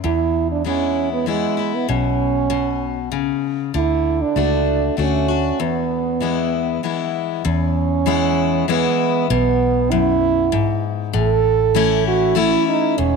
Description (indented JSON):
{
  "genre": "honky-tonk and classic country",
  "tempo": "97 BPM",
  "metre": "3/4",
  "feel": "straight",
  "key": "E mixolydian, E major from 7.4 s",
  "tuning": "A4 = 440 Hz",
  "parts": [
    { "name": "mellow French horn", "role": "melody", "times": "0.0-13.2 s", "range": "G#3 to A4", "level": "-19 LUFS", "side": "right 10 dB", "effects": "none" },
    { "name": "picked steel-string acoustic guitar", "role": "accompaniment", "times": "0.0-13.2 s", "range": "E2 to F#4", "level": "-21 LUFS", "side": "left 13 dB", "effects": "none" },
    { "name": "vintage muted fingered electric bass", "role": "bass", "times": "0.0-13.2 s", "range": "E1 to E2", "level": "-23 LUFS", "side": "left 2 dB", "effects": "none" }
  ],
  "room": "moderate plate reverb, RT60 2.9 s",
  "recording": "1960s-style stereo with parts hard left and right",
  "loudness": "-16 LUFS",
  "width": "side -5 dB against mid",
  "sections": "0.0-7.4 A section; 7.4-13.2 B section",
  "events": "break 5.6-7.4",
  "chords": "0.0 E; 3.7 D; 5.6 E; 11.1 A",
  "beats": "| 0.04 0.66 1.28 | 1.90 2.51 3.13 | 3.75 4.36 4.98 | 5.60 6.21 6.83 | 7.45 8.06 8.68 | 9.29 9.91 10.52 | 11.14 11.75 12.37 | 12.98"
}